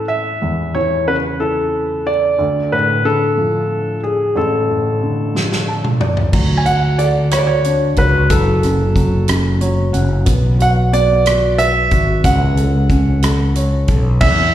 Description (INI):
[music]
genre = six-eight pop ballad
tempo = 61 BPM (dotted quarters)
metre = 6/8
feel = straight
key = unclear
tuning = A4 = 436 Hz
[part]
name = clear grand piano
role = melody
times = 0.0-14.5 s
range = G#4 to G#5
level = -17 LUFS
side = equal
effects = slapback echo
[part]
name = felt-muted upright piano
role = accompaniment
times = 0.0-14.5 s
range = A1 to A5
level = -21 LUFS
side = right 1 dB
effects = none
[part]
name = natural country drum kit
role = drums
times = 5.4-14.4 s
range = crash cymbal, hi-hat, kick drum, rim click, snare drum, toms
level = -19 LUFS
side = equal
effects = none
[part]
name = fretless electric bass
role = bass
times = 6.3-14.5 s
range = F#1 to E2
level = -15 LUFS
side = equal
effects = none
[sound]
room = light reverb, studio reverb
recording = live gig heard through the venue's PA, recital hall reverb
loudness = -13 LUFS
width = side -11 dB against mid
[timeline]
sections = 0.0-6.3 A section; 6.3-14.2 B section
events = felt piano fill 5.3-6.3, 9.3-10.3; drum fill 5.3-6.3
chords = 0.0 A; 2.4 Dm; 6.3 D; 8.3 F#m; 10.3 Bm; 12.2 F#m/C#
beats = | 0.42 1.41 | 2.39 3.38 | 4.36 5.35 | 6.33 7.32 | 8.30 9.29 | 10.27 11.26 | 12.24 13.23 | 14.21